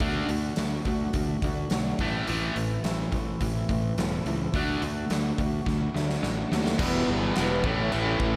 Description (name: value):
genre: classic rock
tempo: 106 BPM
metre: 4/4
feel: straight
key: unclear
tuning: A4 = 444 Hz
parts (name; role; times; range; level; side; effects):
- picked swing-style acoustic guitar; accompaniment; 0.0-8.4 s; E2 to F#4; -37 LUFS; equal; slapback echo
- cranked stack guitar; riff; 0.0-8.4 s; E2 to D4; -32 LUFS; equal; overdrive, spring reverb
- fuzz fingered electric bass; bass; 0.0-8.4 s; E1 to D#2; -33 LUFS; equal; overdrive
- big rock drum kit; drums; 0.0-8.3 s; crash cymbal, hi-hat, kick drum, snare drum; -34 LUFS; equal; none
- tonewheel organ; sustained chords; 6.5-8.4 s; A3 to E5; -39 LUFS; equal; none
- overdriven electric guitar; riff; 6.8-8.4 s; E2 to E4; -33 LUFS; equal; none
room: moderate lush hall reverb, RT60 2.4 s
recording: big arena sound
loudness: -27 LUFS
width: mono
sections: 0.0-6.8 A section; 6.8-8.4 B section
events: drum fill 5.7-6.8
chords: 0.0 D; 2.0 Am; 4.5 D; 6.8 Em; 7.6 A